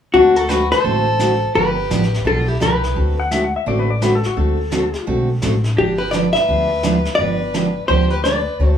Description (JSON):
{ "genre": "country, western swing", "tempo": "170 BPM", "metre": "4/4", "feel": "swing 62% on 8ths", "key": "unclear", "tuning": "A4 = 440 Hz", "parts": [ { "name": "vintage hollow-body jazz guitar", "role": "melody", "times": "0.1-3.1, 5.8-8.8 s", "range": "F#4 to E5", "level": "-17 LUFS", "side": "left 2 dB", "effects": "plate reverb" }, { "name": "clear fiddle", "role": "second line", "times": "0.1-2.9, 5.8-8.8 s", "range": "D4 to B4", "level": "-25 LUFS", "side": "equal", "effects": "none" }, { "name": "picked steel-string acoustic guitar", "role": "accompaniment", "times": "0.1-8.8 s", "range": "D3 to A4", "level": "-21 LUFS", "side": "right 3 dB", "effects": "none" }, { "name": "upright bass", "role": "bass", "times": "0.1-8.8 s", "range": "G1 to D2", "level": "-20 LUFS", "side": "left 1 dB", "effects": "none" }, { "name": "vintage brush drum kit", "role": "drums", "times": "0.1-8.8 s", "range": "brushed snare drum, hi-hat, snare drum", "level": "-30 LUFS", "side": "left 2 dB", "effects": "none" }, { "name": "clean lap steel guitar", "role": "second line", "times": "3.2-5.1 s", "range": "F#4 to F#5", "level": "-22 LUFS", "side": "left 4 dB", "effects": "none" } ], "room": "moderate studio ambience, RT60 0.5 s", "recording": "small room ambience", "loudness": "-15 LUFS", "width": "side -8 dB against mid", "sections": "0.1-8.8 A section", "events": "none", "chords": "0.1 D7; 1.6 G7; 3.0 D7; 5.8 G7" }